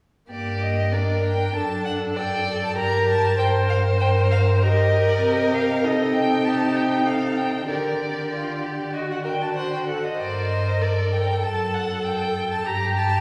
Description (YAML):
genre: quick classical-period movement for string quartet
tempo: 97 BPM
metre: 4/4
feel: straight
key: G minor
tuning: A4 = 441 Hz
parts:
  - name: rich violin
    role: melody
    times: 0.3-13.2 s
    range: D5 to Bb5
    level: -29 LUFS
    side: equal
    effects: none
  - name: rich violin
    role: second line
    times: 0.3-13.2 s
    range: F4 to D5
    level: -28 LUFS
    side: equal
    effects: none
  - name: rich viola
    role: accompaniment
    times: 0.3-13.2 s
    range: Bb3 to Bb4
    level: -32 LUFS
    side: equal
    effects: none
  - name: rich cello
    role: bass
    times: 0.3-13.2 s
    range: F#2 to D3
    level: -26 LUFS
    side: equal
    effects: none
room: wet recital hall reverb, RT60 1.7 s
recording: recorded in a church or concert hall, studio reverb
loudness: -22 LUFS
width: mono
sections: 0.3-13.2 A section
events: none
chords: 0.3 Gm; 1.5 D/F#; 2.8 Gm; 5.2 Cm; 7.7 Gm/D; 8.9 D; 10.2 Gm; 11.4 F#m; 12.7 Gm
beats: | 0.30 0.93 1.54 2.16 | 2.78 3.39 4.01 4.62 | 5.23 5.84 6.45 7.06 | 7.69 8.32 8.94 9.56 | 10.19 10.81 11.43 12.04 | 12.65